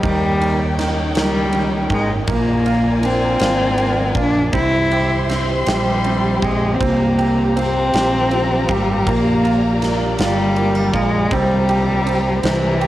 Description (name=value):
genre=six-eight pop ballad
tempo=53 BPM (dotted quarters)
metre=6/8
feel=straight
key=unclear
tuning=A4 = 441 Hz
part: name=warm cello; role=melody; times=0.0-12.9 s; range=E3 to E4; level=-18 LUFS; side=left 1 dB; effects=cassette tape, analog delay
part: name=bright grand piano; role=accompaniment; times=0.0-12.9 s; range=Eb3 to G4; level=-23 LUFS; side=right 6 dB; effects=cassette tape
part: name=warm studio string section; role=sustained chords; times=0.0-12.9 s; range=Eb4 to C6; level=-24 LUFS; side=left 2 dB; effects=cassette tape
part: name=fingerpicked plugged-in steel-string acoustic guitar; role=arpeggios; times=0.0-12.9 s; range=Eb3 to F4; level=-30 LUFS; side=right 6 dB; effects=none
part: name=fretless electric bass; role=bass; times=0.0-12.9 s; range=G1 to Eb2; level=-22 LUFS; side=equal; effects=none
part: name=huge arena drum kit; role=drums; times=0.0-12.9 s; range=kick drum, ride cymbal, snare drum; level=-24 LUFS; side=equal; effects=cassette tape
room=light reverb, small room ambience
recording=home recording on cassette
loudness=-15 LUFS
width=side -14 dB against mid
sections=0.0-12.9 A section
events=none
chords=0.0 Eb7; 2.3 Bb7; 4.5 C; 6.8 C7sus4; 9.1 Bb6; 11.3 C7sus4